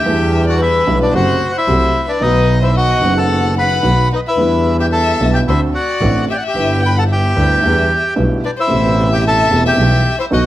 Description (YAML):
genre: tango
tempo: 112 BPM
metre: 4/4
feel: rubato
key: E minor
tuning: A4 = 440 Hz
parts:
  - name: bandoneon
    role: melody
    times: 0.0-10.5 s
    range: D4 to B5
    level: -17 LUFS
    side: equal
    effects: tape echo
  - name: warm violin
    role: second line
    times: 0.0-10.4 s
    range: B4 to G5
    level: -20 LUFS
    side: left 5 dB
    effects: none
  - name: dark baby grand piano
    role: accompaniment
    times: 0.0-10.5 s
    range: E1 to G4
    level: -18 LUFS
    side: right 1 dB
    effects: none
  - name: clear double bass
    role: bass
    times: 0.0-10.5 s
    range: E1 to E2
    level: -17 LUFS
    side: equal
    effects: none
room: light reverb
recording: vinyl crackle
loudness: -12 LUFS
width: side -14 dB against mid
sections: 0.0-10.5 A section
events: none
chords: 0.1 Em7; 1.1 F#dim; 2.2 B; 4.4 Em7; 5.5 D7; 6.6 G6; 7.6 Em7; 8.7 Amadd9; 9.8 Em/B